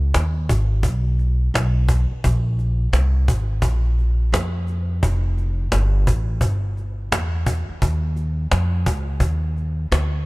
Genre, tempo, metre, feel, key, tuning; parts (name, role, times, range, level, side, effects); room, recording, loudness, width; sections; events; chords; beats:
hip hop, jazz-hop; 86 BPM; 4/4; swing 63% on 16ths; A4 = 440 Hz
upright bass; bass; 0.0-10.3 s; F1 to F2; -19 LUFS; equal
cajon; drums; 0.1-10.1 s; -24 LUFS; equal
little or no reverb; -18 LUFS; side -22 dB against mid
0.0-2.2 A section; 2.2-10.3 A section
0.15 0.84 1.54 | 2.24 2.94 3.64 4.33 | 5.03 5.73 6.43 7.12 | 7.82 8.52 9.22 9.91